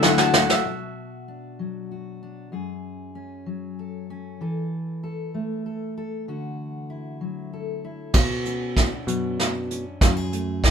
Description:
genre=indie folk with a building arrangement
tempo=64 BPM (dotted quarters)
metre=6/8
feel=straight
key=unclear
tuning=A4 = 440 Hz
part: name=fingerpicked steel-string acoustic guitar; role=accompaniment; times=0.0-10.7 s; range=F#2 to A4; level=-30 LUFS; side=left 2 dB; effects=none
part: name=picked acoustic archtop guitar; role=accompaniment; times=0.0-0.7 s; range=E3 to F#4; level=-23 LUFS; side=left 8 dB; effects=none
part: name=kora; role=arpeggios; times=0.0-1.5 s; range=D5 to A5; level=-28 LUFS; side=right 4 dB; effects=none
part: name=picked electric bass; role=bass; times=0.0-0.5, 8.1-10.7 s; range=F#2 to D3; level=-27 LUFS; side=equal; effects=none
part: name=soft brush drum kit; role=drums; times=0.0-0.6, 8.1-10.7 s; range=crash cymbal, hi-hat, kick drum, snare drum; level=-20 LUFS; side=right 1 dB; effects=none
room=light reverb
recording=band playing live in one room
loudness=-23 LUFS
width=side -7 dB against mid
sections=0.7-8.2 A section; 8.2-10.7 B section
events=drum fill 0.0-0.7, 8.2-10.7; build-up 8.2-10.7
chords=0.0 Dadd9; 0.7 Bm; 2.5 F#madd9; 4.4 A5/E; 6.3 Dadd9; 8.2 Bmadd9; 10.0 F#madd9

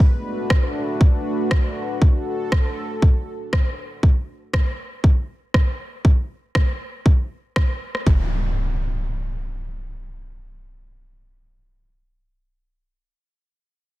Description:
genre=afro house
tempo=119 BPM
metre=4/4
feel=swing 54% on 16ths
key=B minor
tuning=A4 = 440 Hz
part: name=warm analog pad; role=sustained chords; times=0.0-4.0 s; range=A3 to B4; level=-26 LUFS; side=equal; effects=chorus, sidechain pumping
part: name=electronic kick drum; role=drums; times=0.0-8.2 s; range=none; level=-16 LUFS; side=equal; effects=none
part: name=electronic rim click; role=drums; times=0.5-8.0 s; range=none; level=-27 LUFS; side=equal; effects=soft clipping on snare
part: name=impact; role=sound effects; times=8.1-12.8 s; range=none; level=-26 LUFS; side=equal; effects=none
room=digital ambience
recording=dense, heavily limited modern master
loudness=-18 LUFS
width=side -17 dB against mid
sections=0.0-8.1 A section; 8.1-12.1 B section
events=none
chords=0.0 Bm7; 4.0 N.C.

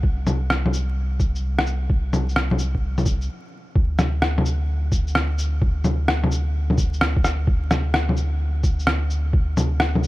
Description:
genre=future garage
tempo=129 BPM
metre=4/4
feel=swing 67% on 16ths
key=unclear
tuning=A4 = 439 Hz
part: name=warm sub bass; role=bass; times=0.0-10.1 s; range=C2 to D2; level=-22 LUFS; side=equal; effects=sidechain pumping
part: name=electronic kick drum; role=drums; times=0.0-9.5 s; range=none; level=-20 LUFS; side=equal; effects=none
part: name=electronic bongos, shaker and rim click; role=drums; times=0.3-10.1 s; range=none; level=-23 LUFS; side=left 1 dB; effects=none
room=little or no reverb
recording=vinyl crackle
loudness=-19 LUFS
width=side -18 dB against mid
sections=0.0-3.8 A section; 3.8-10.1 B section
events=stop 3.3-3.8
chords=none

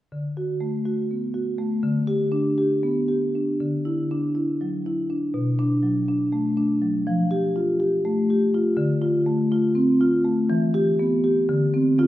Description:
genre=classical, contemporary piece for solo marimba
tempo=244 BPM (eighths)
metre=7/8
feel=rubato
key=unclear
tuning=A4 = 440 Hz
part: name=marimba with medium hard mallets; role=solo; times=0.1-12.1 s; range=B2 to G4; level=-20 LUFS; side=equal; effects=none
room=wet recital hall reverb, RT60 1.4 s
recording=heard from further back in the room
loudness=-20 LUFS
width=side -14 dB against mid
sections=0.1-3.6 A section; 3.6-12.1 B section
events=none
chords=0.1 D6; 1.8 G/D; 3.6 Dadd9; 5.3 Bm7; 7.1 Fadd9; 8.8 Dm7; 10.5 Em; 11.5 Dm7

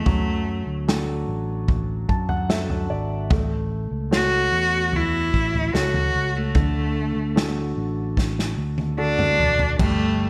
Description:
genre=pop ballad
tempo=74 BPM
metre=4/4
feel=straight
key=unclear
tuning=A4 = 439 Hz
part: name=clear cello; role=melody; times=0.0-10.3 s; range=A3 to F#4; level=-25 LUFS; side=equal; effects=none
part: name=warm concert grand piano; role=accompaniment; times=0.0-10.3 s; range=D3 to A5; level=-32 LUFS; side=equal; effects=none
part: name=fingered electric bass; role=bass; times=0.0-10.3 s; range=E1 to F#2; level=-28 LUFS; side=equal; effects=none
part: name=unplugged drum kit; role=drums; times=0.1-10.0 s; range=crash cymbal, kick drum, snare drum, toms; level=-26 LUFS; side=equal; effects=gated reverb
room=light reverb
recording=bright 1980s-style digital production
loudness=-22 LUFS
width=mono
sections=0.0-9.8 A section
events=grand piano fill 1.7-3.3; drum fill 8.2-9.8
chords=0.1 D; 3.3 A6; 6.6 D; 9.8 Gsus2

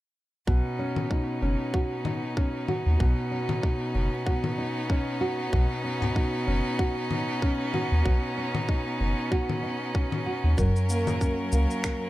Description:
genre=folktronica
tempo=95 BPM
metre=4/4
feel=swing 56% on 16ths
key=B major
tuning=A4 = 441 Hz
part: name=clear string quartet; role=sustained chords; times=0.5-12.1 s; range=F#3 to A#4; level=-32 LUFS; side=equal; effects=none
part: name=nylon-string guitar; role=arpeggios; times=0.5-12.1 s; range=F#2 to A#4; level=-29 LUFS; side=equal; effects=none
part: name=warm sub bass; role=bass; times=0.5-11.7 s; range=F#1 to D#2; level=-24 LUFS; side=equal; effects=none
part: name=electronic kick drum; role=drums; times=0.5-12.0 s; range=none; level=-27 LUFS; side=equal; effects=none
part: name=electronic congas, shaker and finger snaps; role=drums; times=1.0-12.0 s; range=none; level=-31 LUFS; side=left 3 dB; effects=none
room=light reverb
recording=none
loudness=-24 LUFS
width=side -16 dB against mid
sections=0.5-12.1 A section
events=none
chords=0.5 Badd9; 10.6 F#

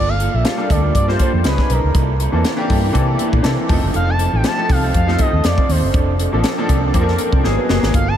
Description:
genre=polished 1980s jazz-funk pop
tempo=120 BPM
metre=4/4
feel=swing 54% on 16ths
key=unclear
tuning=A4 = 440 Hz
part: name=expressive portamento lead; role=melody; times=0.0-8.2 s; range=Bb4 to A5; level=-24 LUFS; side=equal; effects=chorus, analog delay
part: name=electric guitar at the edge of break-up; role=riff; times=0.0-8.1 s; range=Bb3 to C#5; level=-26 LUFS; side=right 7 dB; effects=wide subtle chorus
part: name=vintage muted fingered electric bass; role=bass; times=0.0-8.2 s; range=F1 to C3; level=-18 LUFS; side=equal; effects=none
part: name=crisp fusion drum kit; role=drums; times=0.2-8.1 s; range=hi-hat, kick drum, snare drum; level=-19 LUFS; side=equal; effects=none
part: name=clear baby grand piano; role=accompaniment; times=0.4-8.0 s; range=E3 to C5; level=-21 LUFS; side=left 1 dB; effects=ensemble chorus
room=moderate huge ambient reverb, RT60 8.2 s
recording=dreamy mix soaked in reverb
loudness=-14 LUFS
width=side -10 dB against mid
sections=0.0-8.2 A section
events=drum fill 7.4-7.9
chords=0.0 Gm9; 1.4 C#9; 1.9 C13; 3.7 F7; 5.9 Bbmaj9/F; 7.4 Abm9

